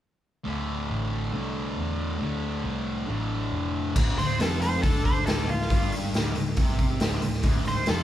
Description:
blues rock power trio and southern rock; 138 BPM; 4/4; straight; D minor; A4 = 436 Hz
thick fuzz guitar; riff; 0.4-8.0 s; D2 to D3; -29 LUFS; left 1 dB; distortion
vintage muted picked electric bass; bass; 0.5-8.0 s; D1 to E2; -31 LUFS; equal
raw garage drum kit; drums; 4.0-8.0 s; crash cymbal, hi-hat, kick drum, snare drum; -25 LUFS; equal
octave-fuzz lead guitar; melody; 4.2-8.0 s; F4 to C5; -29 LUFS; equal; distortion
moderate large studio reverb, RT60 1.1 s; band playing live in one room; -24 LUFS; side -12 dB against mid
0.5-4.0 A section; 4.0-8.0 B section
0.5 Dm7; 4.0 Dm

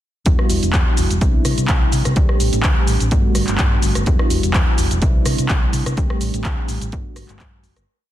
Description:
filtered disco house; 126 BPM; 4/4; swing 54% on 16ths; E minor; A4 = 441 Hz
mellow reed electric piano; accompaniment; 0.3-7.8 s; G3 to G4; -24 LUFS; right 1 dB; phaser, sidechain pumping
hollow-body short-scale fingered electric bass; bass; 0.3-7.8 s; E1 to C3; -21 LUFS; equal; sidechain pumping
electronic kick drum; drums; 0.3-7.5 s; -18 LUFS; equal
punchy analog drum machine; drums; 0.3-7.9 s; cabasa, handclaps, hi-hat, rim click; -23 LUFS; equal; sidechain pumping on hats, sidechain pumping on perc
digital ambience; dense, heavily limited modern master; -15 LUFS; side -13 dB against mid
0.3-7.9 drop
drop 0.3-7.9; fade-out 5.3-7.9
0.3 Em9; 1.2 Cmaj9; 2.2 D7sus4; 3.1 Gmaj9; 4.1 Em9; 5.0 Cmaj9; 6.0 D7sus4; 6.9 Gmaj9

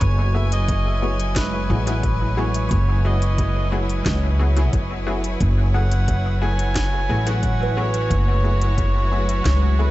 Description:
ambient dub; 89 BPM; 4/4; straight; F# minor; A4 = 440 Hz
melodica; melody; 0.0-9.9 s; B4 to G#5; -28 LUFS; right 1 dB; dub echo
rich studio string section; sustained chords; 0.0-9.9 s; F#3 to G#5; -28 LUFS; equal
kalimba; arpeggios; 0.0-9.9 s; G#3 to C#6; -32 LUFS; right 5 dB; tape echo
upright bass; bass; 0.0-9.9 s; F#1 to C#2; -20 LUFS; equal
electronic kick drum; drums; 0.0-9.6 s; -25 LUFS; equal
organic electronic drum kit; drums; 0.0-9.6 s; hi-hat, snare drum; -32 LUFS; equal; dub echo
filtered dub chord stab; stabs; 0.3-9.9 s; A3 to G#4; -30 LUFS; left 2 dB; chorus, cassette tape, dub echo
small room ambience; nothing above 7.9 kHz; -18 LUFS; side -16 dB against mid
0.0-9.9 A section
0.0 F#m11

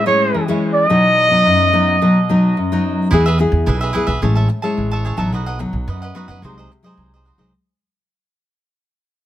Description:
samba; 108 BPM; 4/4; straight; E major; A4 = 437 Hz
warm trumpet; melody; 0.0-2.5 s; C#5 to D#5; -15 LUFS; right 1 dB; tape echo
nylon-string guitar; accompaniment; 0.0-7.5 s; F#2 to G#4; -17 LUFS; left 2 dB
cavaquinho; accompaniment; 3.1-7.5 s; E4 to A5; -24 LUFS; right 3 dB
upright bass; bass; 3.1-7.5 s; A1 to F#2; -18 LUFS; right 1 dB
light reverb; close, detailed microphones; -13 LUFS; side -12 dB against mid
0.0-3.1 A section; 3.1-7.5 B section
fade-out 3.1-7.5
0.0 Amaj7; 0.9 B; 3.1 E; 4.2 Amaj7; 5.3 B; 6.4 G#7/B#

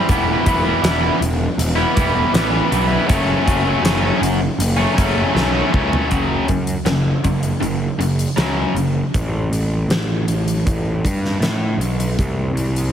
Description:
quiet-loud alternative rock; 79 BPM; 4/4; straight; A4 = 439 Hz
overdriven electric guitar; riff; 0.0-9.1 s; F#2 to E4; -18 LUFS; equal
fuzz picked electric bass; bass; 0.1-12.9 s; E1 to A2; -20 LUFS; equal; overdrive
huge arena drum kit; drums; 0.1-12.9 s; hi-hat, kick drum, snare drum, toms; -21 LUFS; equal
light reverb; heavily compressed radio sound, multiband compression; -16 LUFS; side -9 dB against mid
0.0-6.1 A section; 6.1-9.1 B section; 9.1-12.9 C section
drum fill 5.4-6.1
0.1 Em; 3.1 F#m; 6.1 F#5; 9.1 Asus2; 12.2 C5

